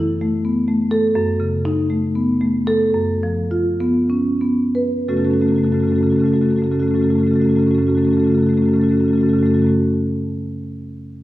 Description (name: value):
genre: classical, contemporary piece for solo marimba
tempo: 173-261 BPM (eighths)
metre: 7/8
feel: rubato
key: F# minor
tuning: A4 = 440 Hz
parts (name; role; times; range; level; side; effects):
- marimba with medium mallets; solo; 0.0-9.8 s; F#2 to B4; -15 LUFS; equal; none
room: wet recital hall reverb, RT60 1.7 s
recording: heard from further back in the room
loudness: -15 LUFS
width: side -15 dB against mid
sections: 0.0-5.1 A section; 5.1-9.7 B section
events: slowing down 0.3-5.1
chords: 0.0 Esus24/F#; 1.2 F#m6; 2.9 F#sus4; 5.1 F#m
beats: 0.21 0.44 0.68 0.91 | 1.16 1.40 1.65 1.90 2.16 2.41 2.68 | 2.95 3.22 3.51 3.80 4.10 4.42 4.75 | 5.09 5.43 5.77 6.11 6.44 6.78 7.11 | 7.44 7.77 8.11 8.44 8.76 9.09 9.42